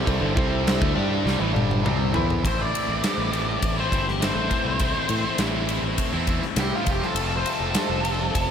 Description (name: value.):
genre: classic rock.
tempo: 101 BPM.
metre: 4/4.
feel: straight.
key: A minor.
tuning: A4 = 440 Hz.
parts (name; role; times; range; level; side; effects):
bright concert grand piano; accompaniment; 0.0-2.4 s; E4 to C5; -30 LUFS; right 5 dB; none.
tonewheel organ; sustained chords; 0.0-2.4 s; C5 to A5; -38 LUFS; equal; none.
cranked stack guitar; riff; 0.0-8.5 s; G2 to G4; -29 LUFS; left 12 dB; overdrive, phaser.
crunchy overdriven guitar; riff; 0.0-2.4 s; G2 to G4; -30 LUFS; equal; none.
distorted electric guitar; riff; 0.0-8.5 s; F2 to G4; -29 LUFS; right 12 dB; overdrive.
growling fingered electric bass; bass; 0.0-8.5 s; F1 to A2; -28 LUFS; equal; overdrive.
huge arena drum kit; drums; 0.1-8.5 s; crash cymbal, kick drum, ride cymbal, snare drum, toms; -26 LUFS; equal; none.
octave-fuzz lead guitar; melody; 2.5-8.5 s; F4 to D5; -28 LUFS; left 1 dB; distortion, tape echo.
room: small room ambience.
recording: none.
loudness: -21 LUFS.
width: side -8 dB against mid.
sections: 0.0-2.4 A section; 2.4-8.5 B section.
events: drum fill 1.2-2.4; lead electric guitar solo 2.4-8.5.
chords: 0.0 Am; 6.9 F.